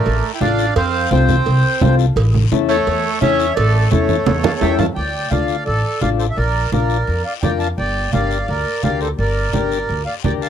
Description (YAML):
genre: latin, cumbia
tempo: 171 BPM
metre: 4/4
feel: straight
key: D minor from 5.0 s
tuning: A4 = 437 Hz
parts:
  - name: accordion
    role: melody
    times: 0.0-10.5 s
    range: A4 to A5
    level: -20 LUFS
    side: right 1 dB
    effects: none
  - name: bright trumpet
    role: second line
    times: 0.0-4.7 s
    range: A3 to E4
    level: -24 LUFS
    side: right 12 dB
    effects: none
  - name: upright bass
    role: bass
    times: 0.1-10.5 s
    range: G1 to F2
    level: -19 LUFS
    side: equal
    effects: none
  - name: cowbell and timbales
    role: percussion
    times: 0.1-4.9 s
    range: none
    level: -24 LUFS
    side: right 8 dB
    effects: none
  - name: guiro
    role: percussion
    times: 0.1-10.5 s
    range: none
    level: -33 LUFS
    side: left 23 dB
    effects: none
  - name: overdriven combo organ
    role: accompaniment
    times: 0.4-10.5 s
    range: C4 to Bb4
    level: -23 LUFS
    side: left 15 dB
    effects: spring reverb
  - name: congas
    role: percussion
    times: 0.4-10.4 s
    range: none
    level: -20 LUFS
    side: right 4 dB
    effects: none
room: light reverb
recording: dry, close 1970s-style studio recording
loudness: -15 LUFS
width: side -9 dB against mid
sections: 0.0-5.0 A section; 5.0-10.5 B section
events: drum fill 4.3-5.0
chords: 0.0 Dm; 0.8 Fadd9; 2.2 A; 5.0 Dm; 6.4 Bb; 7.8 Gm